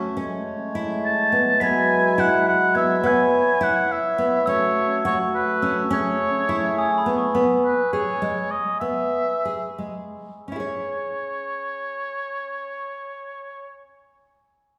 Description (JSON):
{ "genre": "contemporary instrumental, chamber music in an uneven meter", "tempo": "166-209 BPM (eighths)", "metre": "5/8", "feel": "straight", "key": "C# minor", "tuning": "A4 = 440 Hz", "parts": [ { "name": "hand-pumped harmonium", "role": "sustained chords", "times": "0.0-7.3 s", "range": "F#3 to E5", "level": "-27 LUFS", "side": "equal", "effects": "none" }, { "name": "nylon-string guitar", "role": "arpeggios", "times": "0.0-13.9 s", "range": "G#3 to C#5", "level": "-27 LUFS", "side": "equal", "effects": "none" }, { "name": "clear oboe", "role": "melody", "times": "1.1-13.8 s", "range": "B4 to A5", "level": "-26 LUFS", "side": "equal", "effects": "none" }, { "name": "glockenspiel with rubber mallets", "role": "texture", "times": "1.6-7.9 s", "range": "G#5 to B6", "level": "-31 LUFS", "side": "equal", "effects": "none" } ], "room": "wet recital hall reverb, RT60 1.6 s", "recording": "recorded in a church or concert hall", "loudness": "-22 LUFS", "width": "mono", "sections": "0.0-7.3 A section; 7.3-10.5 B section; 10.5-14.1 C section", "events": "slowing down 7.3-10.5", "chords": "0.2 Amaj7; 1.6 Eadd9; 3.0 C#m7; 4.5 F#m7; 5.9 Amaj7; 7.3 G#madd11; 10.5 C#5" }